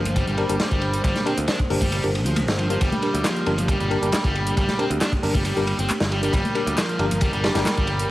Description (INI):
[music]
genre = breakbeat, breaks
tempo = 136 BPM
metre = 4/4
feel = straight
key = G minor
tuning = A4 = 439 Hz
[part]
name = dark analog pad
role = sustained chords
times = 0.0-8.1 s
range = Bb3 to C5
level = -30 LUFS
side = right 1 dB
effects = chorus, vintage 12-bit sampler grit, sidechain pumping
[part]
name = overdriven semi-hollow guitar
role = riff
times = 0.0-8.1 s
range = F3 to D4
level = -26 LUFS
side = right 1 dB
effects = tape echo
[part]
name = modern bright picked electric bass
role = bass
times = 0.0-8.1 s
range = G1 to D2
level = -25 LUFS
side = equal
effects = none
[part]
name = crunchy breakbeat drum kit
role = drums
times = 0.1-8.0 s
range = hi-hat, kick drum, ride cymbal, snare drum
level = -25 LUFS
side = equal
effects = none
[part]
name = punchy analog drum machine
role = drums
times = 0.1-8.1 s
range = handclaps, hi-hat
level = -33 LUFS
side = equal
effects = overdrive
[part]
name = congas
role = percussion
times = 0.1-7.7 s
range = none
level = -32 LUFS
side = left 1 dB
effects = none
[part]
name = tine electric piano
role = stabs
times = 0.4-7.6 s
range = D4 to Bb4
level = -28 LUFS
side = left 2 dB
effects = medium stereo tremolo, low-pass filter, tape echo
[sound]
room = light reverb, small room ambience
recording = vinyl crackle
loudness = -19 LUFS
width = side -16 dB against mid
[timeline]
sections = 0.0-8.1 A section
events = none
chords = 0.0 Gm